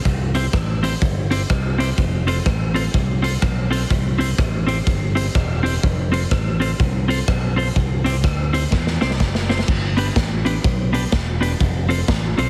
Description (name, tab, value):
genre	ska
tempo	125 BPM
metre	4/4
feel	swing 62% on 8ths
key	C major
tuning	A4 = 440 Hz
part	fingered electric bass	bass	0.1-12.5 s	E1 to E2	-24 LUFS	equal	none
part	raw garage drum kit	drums	0.1-12.5 s	crash cymbal, hi-hat, kick drum, rim click, snare drum	-23 LUFS	equal	none
part	clean electric guitar	accompaniment	0.3-12.5 s	B3 to C5	-27 LUFS	equal	dub echo
room	studio reverb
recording	heavily compressed radio sound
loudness	-20 LUFS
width	mono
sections	0.0-9.7 A section; 9.7-12.5 B section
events	drum fill 8.7-9.7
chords	0.1 C; 2.0 F; 3.9 C; 5.8 F; 7.8 C; 9.7 G; 11.6 F